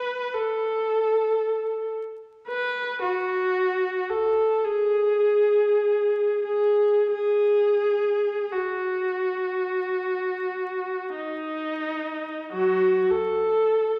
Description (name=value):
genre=classical, free, expressive piece for unaccompanied viola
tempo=38-58 BPM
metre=4/4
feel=rubato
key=F# dorian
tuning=A4 = 440 Hz
part: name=rich viola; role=solo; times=0.0-14.0 s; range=F#3 to B4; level=-24 LUFS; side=equal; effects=none
room=wet recital hall reverb, RT60 1.5 s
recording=vinyl crackle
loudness=-24 LUFS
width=mono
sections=0.0-12.5 A section; 12.5-14.0 B section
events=none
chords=none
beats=0.34 1.43 | 2.48 3.57 4.65 5.81 | 7.10 8.51 9.85 11.15 | 12.52 13.66